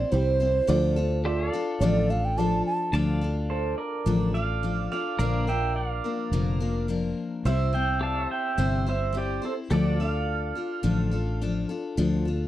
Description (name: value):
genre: honky-tonk and classic country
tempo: 106 BPM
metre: 4/4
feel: straight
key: D minor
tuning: A4 = 441 Hz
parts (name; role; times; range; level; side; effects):
- mellow alto ocarina; melody; 0.0-2.9 s; C5 to A5; -26 LUFS; right 3 dB; none
- picked steel-string acoustic guitar; accompaniment; 0.0-12.5 s; Bb2 to C5; -29 LUFS; left 4 dB; none
- pedal steel guitar; sustained chords; 0.0-12.5 s; F4 to A5; -38 LUFS; left 1 dB; none
- fingered electric bass; bass; 0.0-12.5 s; F1 to D2; -26 LUFS; equal; none
- dark upright piano; accompaniment; 0.1-2.8 s; E4 to D5; -32 LUFS; right 7 dB; none
- pedal steel guitar; second line; 3.5-11.7 s; G4 to A5; -30 LUFS; right 5 dB; none
room: light reverb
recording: dry, close 1970s-style studio recording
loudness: -24 LUFS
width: side -13 dB against mid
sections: 0.0-2.9 A section; 2.9-12.5 B section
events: ocarina solo 0.0-2.9; pedal steel guitar solo 2.9-12.5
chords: 0.0 C; 0.7 Dm; 5.2 Bb; 7.5 C; 9.7 Dm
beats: 0.12 | 0.68 1.24 1.81 2.37 | 2.93 3.50 4.06 4.63 | 5.19 5.76 6.32 6.89 | 7.45 8.02 8.58 9.15 | 9.71 10.28 10.84 11.41 | 11.97